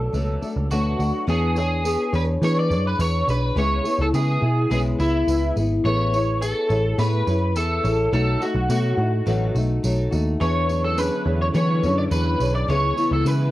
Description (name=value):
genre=indie pop, bedroom pop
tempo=105 BPM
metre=4/4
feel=straight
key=unclear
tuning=A4 = 440 Hz
part: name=electric guitar at the edge of break-up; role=melody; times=0.0-13.5 s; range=E4 to D5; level=-24 LUFS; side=equal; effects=ensemble chorus, slapback echo
part: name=flamenco guitar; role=accompaniment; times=0.0-13.5 s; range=B2 to C#5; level=-25 LUFS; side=left 2 dB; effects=lush chorus, warbly pitch drift
part: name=vintage muted picked electric bass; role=bass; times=0.0-13.5 s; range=G#1 to E3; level=-22 LUFS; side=right 1 dB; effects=none
part: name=tambourine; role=percussion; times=0.1-13.4 s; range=none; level=-40 LUFS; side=right 4 dB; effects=none
part: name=string machine, full ensemble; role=sustained chords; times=10.4-13.5 s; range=C#3 to E4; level=-29 LUFS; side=equal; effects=phaser, ensemble chorus
room=light reverb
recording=worn, warbling old tape, cassette tape, warbly pitch drift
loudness=-19 LUFS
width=side -16 dB against mid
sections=0.0-1.3 A section; 1.3-13.5 B section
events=none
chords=0.0 Bm7; 1.3 E13; 3.6 C#m7; 5.8 Amaj9; 8.1 B7; 10.4 E13; 12.7 C#m7